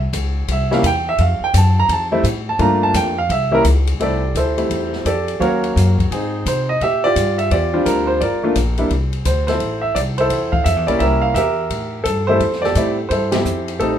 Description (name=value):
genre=jazz piano trio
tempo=171 BPM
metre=4/4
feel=swing 64% on 8ths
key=F major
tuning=A4 = 439 Hz
part: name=upright bass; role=bass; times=0.0-14.0 s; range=G1 to C3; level=-19 LUFS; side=equal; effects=none
part: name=open jazz drum kit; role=drums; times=0.1-13.9 s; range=hi-hat, kick drum, ride cymbal, snare drum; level=-26 LUFS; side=left 3 dB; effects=none
part: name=warm baby grand piano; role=melody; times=0.5-14.0 s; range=Gb3 to Bb5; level=-17 LUFS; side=right 1 dB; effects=none
room=moderate studio ambience, RT60 0.5 s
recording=minimal, uncompressed stereo recording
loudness=-15 LUFS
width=side -9 dB against mid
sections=0.0-4.0 A section; 4.0-14.0 B section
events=grand piano solo 0.0-4.0; band accent 13.3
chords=0.0 C(b9); 1.2 F; 2.6 Gm7; 3.3 C7b9; 4.0 Fmaj9; 5.4 Ebm7; 6.1 Ab; 6.8 Bb6; 8.2 Gm7; 8.9 Csus2; 9.6 Fmaj7 (rootless); 11.0 C7b9; 12.4 Fmaj9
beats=0.14 0.49 0.84 | 1.19 1.54 1.89 2.24 | 2.60 2.95 3.30 3.65 | 4.00 4.35 4.70 5.05 | 5.40 5.75 6.11 6.46 | 6.81 7.16 7.51 7.86 | 8.21 8.56 8.91 9.26 | 9.61 9.96 10.31 10.66 | 11.01 11.36 11.71 12.05 | 12.40 12.75 13.10 13.45 | 13.80